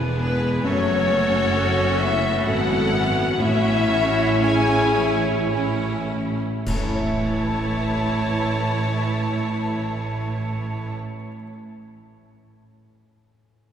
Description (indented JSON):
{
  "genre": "cinematic, emotional film score for orchestra",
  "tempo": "51-69 BPM",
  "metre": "3/4",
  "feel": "rubato",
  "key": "A major",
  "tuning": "A4 = 440 Hz",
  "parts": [
    { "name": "bright oboe", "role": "second line", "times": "0.0-11.0 s", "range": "A4 to C#5", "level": "-32 LUFS", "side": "right 1 dB", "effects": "none" },
    { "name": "clear clarinet", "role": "second line", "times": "0.0-11.0 s", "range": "E4 to F#4", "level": "-33 LUFS", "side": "equal", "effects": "none" },
    { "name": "clear studio violin section", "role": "second line", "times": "0.0-11.0 s", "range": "C#4 to C#5", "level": "-32 LUFS", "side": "left 1 dB", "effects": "none" },
    { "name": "felt-muted upright piano", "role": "accompaniment", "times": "0.0-13.7 s", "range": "F#1 to E5", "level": "-29 LUFS", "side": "left 1 dB", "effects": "none" },
    { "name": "warm symphonic viola section", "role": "accompaniment", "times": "0.0-11.0 s", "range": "E3 to A4", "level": "-28 LUFS", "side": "right 2 dB", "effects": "none" },
    { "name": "warm studio cello section", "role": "bass", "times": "0.0-11.0 s", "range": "E2 to A2", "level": "-28 LUFS", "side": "right 2 dB", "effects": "none" },
    { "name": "warm symphonic double bass section", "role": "bass", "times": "0.0-11.0 s", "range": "E1 to A1", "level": "-28 LUFS", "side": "right 3 dB", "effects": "none" },
    { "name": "rich symphonic violin section", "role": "melody", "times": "0.2-11.0 s", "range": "B4 to A5", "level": "-28 LUFS", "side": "left 4 dB", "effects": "none" },
    { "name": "mellow hollow silver concert flute", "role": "second line", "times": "0.2-11.0 s", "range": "B4 to A5", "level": "-29 LUFS", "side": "left 2 dB", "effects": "none" },
    { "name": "mellow French horn section", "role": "sustained chords", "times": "0.2-11.0 s", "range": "A3 to G#4", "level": "-29 LUFS", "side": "left 2 dB", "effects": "none" },
    { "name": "clash cymbals and concert bass drum", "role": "percussion", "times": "6.7-9.0 s", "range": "none", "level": "-31 LUFS", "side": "equal", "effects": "none" }
  ],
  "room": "wet church reverb, RT60 3.6 s",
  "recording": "none",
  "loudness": "-19 LUFS",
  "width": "side -8 dB against mid",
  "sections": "0.0-6.7 A section; 6.7-10.2 B section",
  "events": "slowing down 0.0-6.7; band accent 6.7-7.9",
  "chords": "0.0 E; 0.7 F#m; 3.4 A"
}